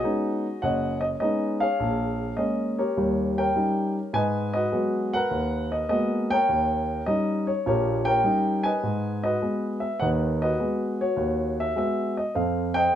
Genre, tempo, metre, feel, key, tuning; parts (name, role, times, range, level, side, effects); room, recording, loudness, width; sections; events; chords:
solo jazz; 102 BPM; 4/4; swing 69% on 8ths; G# minor; A4 = 440 Hz
warm grand piano; solo; 0.0-13.0 s; F#1 to G#5; -23 LUFS; equal
moderate studio reverb, RT60 0.8 s; -23 LUFS; side -10 dB against mid
0.0-13.0 A section
0.0 B69; 1.8 A#m7; 3.0 D#7; 4.1 G#m9; 6.5 D#7; 8.8 G#m7; 12.3 F7